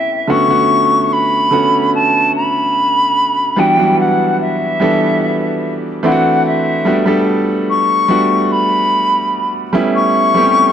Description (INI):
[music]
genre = R&B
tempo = 73 BPM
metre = 4/4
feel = straight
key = B minor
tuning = A4 = 439 Hz
[part]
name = silver concert flute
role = melody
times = 0.0-10.7 s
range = E5 to C#6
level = -14 LUFS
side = left 1 dB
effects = tape echo
[part]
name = bright grand piano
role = accompaniment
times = 0.0-10.7 s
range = D3 to A4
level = -15 LUFS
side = right 1 dB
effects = none
[sound]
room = moderate plate reverb, RT60 2.9 s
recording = dark, warm production, nothing above 10.6 kHz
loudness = -11 LUFS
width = side -9 dB against mid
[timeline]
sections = 0.3-10.7 A section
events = none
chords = 0.3 Bm7; 3.6 Em7; 6.0 D7; 6.9 Gmaj7; 9.7 A7